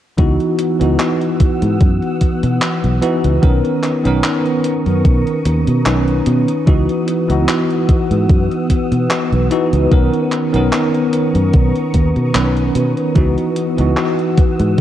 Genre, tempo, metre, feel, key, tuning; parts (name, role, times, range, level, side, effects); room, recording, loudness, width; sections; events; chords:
vaporwave; 74 BPM; 4/4; swing 54% on 16ths; A4 = 443 Hz
bell-like tine electric piano; accompaniment; 0.2-14.8 s; D#3 to B4; -16 LUFS; equal; medium stereo tremolo, lush chorus, tape echo
soft string machine; sustained chords; 0.5-14.8 s; B3 to E6; -24 LUFS; equal; ensemble chorus
fingered electric bass; bass; 0.2-14.8 s; B1 to B2; -16 LUFS; equal; tube saturation
electronic kick drum; drums; 0.2-14.8 s; -13 LUFS; equal; overdrive
gated 80s digital drum machine; drums; 0.2-14.8 s; handclaps, hi-hat; -23 LUFS; equal; gated reverb, overdrive
light reverb; dark, warm production, cassette tape; -13 LUFS; side -12 dB against mid
0.2-14.8 A section
0.2 C#m11; 3.4 Bmaj9; 6.7 C#m11; 9.9 Bmaj9; 13.2 C#m11